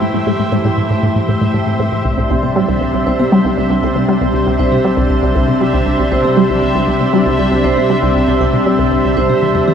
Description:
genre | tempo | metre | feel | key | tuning
ambient, sequencer-driven space music | 118 BPM | 4/4 | straight | C major | A4 = 438 Hz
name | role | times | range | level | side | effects
lush unison pad | sustained chords | 0.0-9.7 s | A2 to C5 | -16 LUFS | left 2 dB | chorus
resonant blip pluck | riff | 0.0-9.7 s | C2 to G3 | -15 LUFS | equal | phaser, tape echo
bubbling stepped-filter texture | texture | 0.0-9.7 s | E5 | -22 LUFS | right 2 dB | chorus, built-in reverb
vibraphone with medium hard mallets | arpeggios | 0.1-9.7 s | A3 to G5 | -20 LUFS | moving between equal and right 7 dB | auto-pan, tape echo
room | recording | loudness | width
wet cathedral reverb, RT60 5.1 s | in a vast, echoing space | -11 LUFS | side -8 dB against mid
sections
0.0-9.7 A section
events
filter sweep on synth arpeggio sound 0.0-9.7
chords
0.0 Am7; 2.1 Csus2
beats
| 0.02 0.53 1.03 1.54 | 2.05 2.56 3.07 3.58 | 4.08 4.59 5.10 5.61 | 6.12 6.63 7.14 7.64 | 8.15 8.66 9.17 9.68

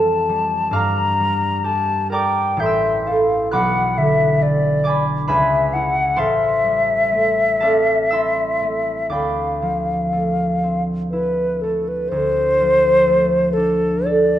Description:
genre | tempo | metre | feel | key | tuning
classical, impressionist duo for flute and harp | 57-68 BPM | 3/4 | rubato | D dorian | A4 = 439 Hz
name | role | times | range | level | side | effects
hollow concert flute | melody | 0.0-14.4 s | A4 to Bb5 | -18 LUFS | left 2 dB | none
concert harp | accompaniment | 0.0-14.4 s | A1 to A6 | -20 LUFS | right 2 dB | none
room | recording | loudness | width
moderate recital hall reverb, RT60 1.9 s | dark, warm production | -16 LUFS | side -12 dB against mid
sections
0.0-12.1 A section; 12.1-14.4 A section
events
none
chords
0.0 Fmaj9; 0.8 Gm7; 2.6 Am7; 3.5 Bm7; 5.3 C#m7; 6.2 Am7; 9.1 Dm9; 12.1 Dm7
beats
| 0.76 1.66 2.62 | 3.51 4.41 5.30 | 6.18 7.10 8.11 | 9.11 10.12 11.12 | 12.12 13.06 14.06

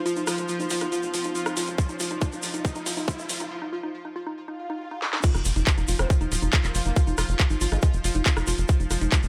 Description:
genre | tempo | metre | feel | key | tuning
psychedelic trance | 139 BPM | 4/4 | straight | unclear | A4 = 440 Hz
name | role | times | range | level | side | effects
pulsing gated texture | sustained chords | 0.0-9.3 s | F3 to F4 | -36 LUFS | equal | chorus, built-in reverb, sidechain pumping
riser, swell and impact | sound effects | 0.0-7.0 s | none | -41 LUFS | equal | none
warbly tape-like pad | texture | 0.0-3.5 s | F4 to C6 | -38 LUFS | equal | chorus, built-in reverb, sidechain pumping
woody wave-folded pluck | riff | 0.1-9.2 s | Eb4 to F4 | -35 LUFS | equal | chorus, sidechain pumping, dub echo
drum and bass drum kit | drums | 0.1-9.3 s | crash cymbal, handclaps, hi-hat, rim click, snare drum | -31 LUFS | equal | high-pass filter on snare, high-pass filter on hats, high-pass filter on cymbals, high-pass filter on room
tube shaker | percussion | 0.1-9.3 s | none | -38 LUFS | equal | none
tight sequencer bass | bass | 0.2-9.3 s | Eb1 to Ab1 | -29 LUFS | equal | high-pass filter
electronic kick drum | drums | 1.8-9.2 s | none | -23 LUFS | equal | none
formant-sweep wobble bass | second line | 6.0-7.9 s | Ab3 to C4 | -40 LUFS | equal | none
room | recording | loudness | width
light reverb, digital ambience | high-pass filter | -25 LUFS | mono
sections
0.0-5.2 A section; 5.2-9.3 B section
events
build-up 0.0-5.2; riser 0.0-3.5; filter sweep on synth arpeggio sound 0.0-5.2; drum fill 1.8-3.5, 5.0; break 3.5-5.2; swell 4.5-5.2; drop 5.2-9.3; impact 5.2-7.0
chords
0.0 F5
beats
| 0.06 0.49 0.92 1.35 | 1.78 2.21 2.65 3.08 | 3.51 3.94 4.37 4.80 | 5.24 5.67 6.10 6.53 | 6.96 7.39 7.83 8.26 | 8.69 9.12

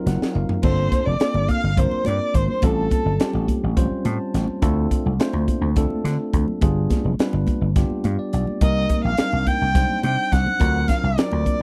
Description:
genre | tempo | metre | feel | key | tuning
electric jazz fusion | 211 BPM (eighths) | 7/8 | straight | G minor | A4 = 441 Hz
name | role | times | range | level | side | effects
bell-like tine electric piano | accompaniment | 0.0-11.6 s | Gb3 to A5 | -29 LUFS | equal | none
vintage slap bass | bass | 0.1-11.4 s | F1 to D3 | -24 LUFS | equal | none
crisp fusion drum kit | drums | 0.1-11.6 s | crash cymbal, hi-hat, kick drum, snare drum, toms | -24 LUFS | equal | none
congas | percussion | 0.1-11.6 s | none | -32 LUFS | equal | none
warm violin | melody | 0.6-3.5, 8.6-11.6 s | A4 to G5 | -27 LUFS | equal | none
concert flute | second line | 0.7-3.5, 8.6-11.6 s | A5 to G6 | -32 LUFS | equal | none
room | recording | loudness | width
little or no reverb | none | -21 LUFS | mono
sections
0.6-11.6 A section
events
tine electric piano fill 0.0-0.6, 3.8-4.6, 7.8-8.6; drum fill 0.2-0.6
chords
0.0 Ab13 (rootless); 0.6 Gm11; 2.6 A7alt; 4.6 Dm7; 6.6 G7b9; 8.6 Cm9; 10.6 D7alt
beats
0.07 0.35 | 0.64 0.92 1.21 1.49 1.78 2.06 2.35 | 2.63 2.92 3.20 3.49 3.77 4.06 4.34 | 4.63 4.91 5.20 5.48 5.77 6.05 6.34 | 6.62 6.91 7.19 7.48 7.76 8.05 8.33 | 8.62 8.90 9.19 9.47 9.76 10.04 10.32 | 10.61 10.89 11.18 11.46

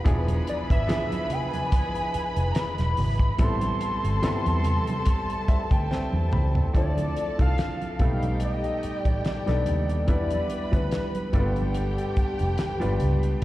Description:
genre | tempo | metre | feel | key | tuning
lush 1970s-style soul | 72 BPM | 4/4 | swing 54% on 16ths | unclear | A4 = 440 Hz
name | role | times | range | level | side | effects
warm studio violin section | second line | 0.0-13.4 s | G4 to B5 | -35 LUFS | left 1 dB | plate reverb, slapback echo
bright baby grand piano | accompaniment | 0.0-13.4 s | E3 to B5 | -31 LUFS | equal | plate reverb, slapback echo
dark studio string section | sustained chords | 0.0-6.7 s | C3 to E4 | -40 LUFS | equal | none
vintage muted fingered electric bass | bass | 0.1-13.3 s | E1 to E2 | -25 LUFS | equal | none
damped 70s drum kit | drums | 0.1-13.4 s | hi-hat, kick drum, snare drum, toms | -25 LUFS | equal | none
congas | percussion | 0.1-13.2 s | none | -35 LUFS | right 3 dB | none
hollow square lead | melody | 0.5-12.0 s | B4 to C6 | -31 LUFS | left 1 dB | chorus, plate reverb, slapback echo
clear trombone section | stabs | 5.5-13.4 s | F3 to G4 | -35 LUFS | right 1 dB | plate reverb, slapback echo
room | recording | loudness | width
light reverb | live gig heard through the venue's PA, recital hall reverb | -22 LUFS | side -16 dB against mid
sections
0.0-6.7 A section; 6.7-13.4 B section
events
band accent 3.4-6.7; grand piano fill 5.1-6.7; drum fill 5.9-6.7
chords
0.1 E7b9; 3.4 Am7; 6.7 Dm9; 8.0 B7alt; 10.1 Em7; 11.3 G7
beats
| 0.06 0.89 1.73 2.56 | 3.40 4.23 5.07 5.90 | 6.74 7.58 8.41 9.25 | 10.08 10.92 11.76 12.59 | 13.43

